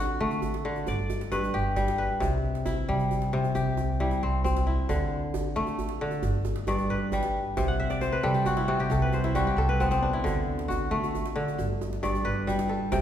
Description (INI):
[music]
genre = west african traditional, West African string and xylophone music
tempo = 90 BPM (dotted quarters)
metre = 12/8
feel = straight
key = D mixolydian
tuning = A4 = 440 Hz
[part]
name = kora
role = arpeggios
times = 0.0-13.0 s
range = G2 to G5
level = -27 LUFS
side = left 2 dB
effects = none
[part]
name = upright bass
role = bass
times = 0.0-13.0 s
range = G1 to D3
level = -30 LUFS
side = right 1 dB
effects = none
[part]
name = djembe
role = percussion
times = 0.2-13.0 s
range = none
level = -34 LUFS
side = right 2 dB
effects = none
[sound]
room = wet recital hall reverb, RT60 1.6 s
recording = recorded in a church or concert hall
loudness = -25 LUFS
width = side -10 dB against mid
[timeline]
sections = 0.0-4.9 A section; 4.9-13.0 B section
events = kora fill 7.7-10.2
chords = 0.0 D; 0.9 G; 2.2 C; 4.9 D5; 6.2 G; 7.6 C5; 10.2 D; 11.6 G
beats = 0.20 0.87 1.54 | 2.22 2.89 3.56 4.23 | 4.90 5.57 6.23 6.90 | 7.57 8.24 8.91 9.57 | 10.24 10.91 11.58 12.24 | 12.91